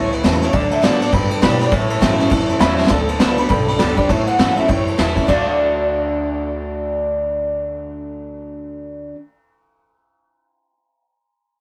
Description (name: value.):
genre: rockabilly.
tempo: 202 BPM.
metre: 4/4.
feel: swing 60% on 8ths.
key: D major.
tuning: A4 = 438 Hz.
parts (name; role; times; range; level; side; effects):
electric guitar through a small old amp; melody; 0.0-9.1 s; A4 to F#5; -25 LUFS; equal; tremolo.
bright upright piano; accompaniment; 0.0-9.1 s; C#5 to B5; -27 LUFS; equal; none.
picked steel-string acoustic guitar; accompaniment; 0.0-9.2 s; E2 to G4; -25 LUFS; equal; none.
electric guitar through a small old amp; riff; 0.0-9.2 s; G2 to F#4; -26 LUFS; equal; none.
upright bass; bass; 0.0-9.1 s; B1 to B2; -29 LUFS; equal; none.
vintage brush drum kit; drums; 0.1-5.4 s; crash cymbal, kick drum, ride cymbal, snare drum; -20 LUFS; equal; none.
room: moderate booth ambience, RT60 0.2 s.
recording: rough rehearsal-room recording.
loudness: -17 LUFS.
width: mono.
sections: 0.0-2.9 A section; 2.9-5.3 B section; 5.3-7.6 C section.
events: upright piano fill 2.5-2.9; drum fill 2.8.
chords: 0.0 A; 0.5 D; 1.1 G; 1.7 A; 2.9 D; 3.5 G; 4.1 A; 5.3 D.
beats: 0.23 | 0.53 0.83 1.12 1.42 | 1.72 2.01 2.31 2.60 | 2.90 3.20 3.50 3.79 | 4.09 4.39 4.68 4.98 | 5.28 5.57 5.87 6.17 | 6.46 6.76 7.06 7.35.